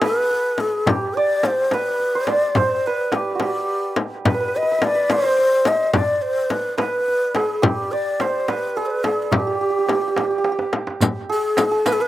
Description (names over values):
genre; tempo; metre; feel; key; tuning
Persian modal ensemble; 71 BPM (dotted quarters); 6/8; straight; G dastgah chahargah; A4 = 440 Hz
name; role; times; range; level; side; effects
breathy low ney; melody; 0.0-12.1 s; G4 to Eb5+40c; -20 LUFS; left 1 dB; slapback echo
santur; second line; 0.0-12.1 s; F#4 to D5; -24 LUFS; right 5 dB; slapback echo
frame drum; percussion; 0.0-12.0 s; none; -22 LUFS; left 3 dB; none
tombak; percussion; 0.0-12.0 s; none; -27 LUFS; right 2 dB; slapback echo
riq; percussion; 11.0-12.0 s; none; -27 LUFS; right 4 dB; none
room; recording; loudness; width
little or no reverb; recorded outdoors, with no room sound; -18 LUFS; side -14 dB against mid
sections
0.0-11.0 A section; 11.0-12.1 B section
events
drum fill 10.5-11.0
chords
none